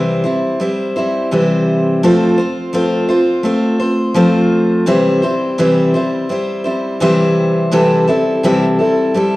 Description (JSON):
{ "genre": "country", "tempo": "84 BPM", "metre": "4/4", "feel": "straight", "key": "C major", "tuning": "A4 = 441 Hz", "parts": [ { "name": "picked steel-string acoustic guitar", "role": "solo", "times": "0.0-9.4 s", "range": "C3 to C5", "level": "-12 LUFS", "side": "equal", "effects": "none" } ], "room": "wet large studio reverb, RT60 1.4 s", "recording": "worn, warbling old tape, cassette tape, warbly pitch drift", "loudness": "-12 LUFS", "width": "side -18 dB against mid", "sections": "0.0-9.4 A section", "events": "none", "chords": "0.0 C; 2.0 F; 4.9 C; 7.7 C6" }